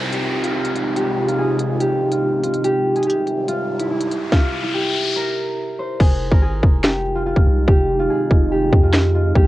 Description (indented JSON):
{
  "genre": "hip hop, drill",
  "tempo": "143 BPM",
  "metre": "4/4",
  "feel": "half-time",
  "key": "F minor",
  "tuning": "A4 = 438 Hz",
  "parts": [
    { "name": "concert harp", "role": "melody", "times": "0.0-9.5 s", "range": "E4 to C5", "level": "-21 LUFS", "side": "equal", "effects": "cassette tape" },
    { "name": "deep dark ambient pad", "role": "sustained chords", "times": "0.0-9.5 s", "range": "C3 to E5", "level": "-24 LUFS", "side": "right 1 dB", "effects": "chorus, built-in reverb, cassette tape" },
    { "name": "downlifter and riser", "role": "sound effects", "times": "0.0-5.2 s", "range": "none", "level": "-27 LUFS", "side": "left 2 dB", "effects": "none" },
    { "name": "drill drum kit", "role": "drums", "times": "0.1-9.5 s", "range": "crash cymbal, handclaps, hi-hat, kick drum, snare drum", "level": "-15 LUFS", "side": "equal", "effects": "vintage 12-bit sampler grit, cassette tape" },
    { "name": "long sustained 808-style bass", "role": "bass", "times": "6.0-9.5 s", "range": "F1 to F2", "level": "-20 LUFS", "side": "equal", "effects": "none" }
  ],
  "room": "little or no reverb",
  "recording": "home recording on cassette",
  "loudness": "-16 LUFS",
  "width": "side -16 dB against mid",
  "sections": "0.0-6.0 A section; 6.0-9.5 B section",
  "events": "riser 3.3-6.0; hi-hats muted 6.0-9.5",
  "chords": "0.0 Fm7; 2.6 C; 6.0 Fm7"
}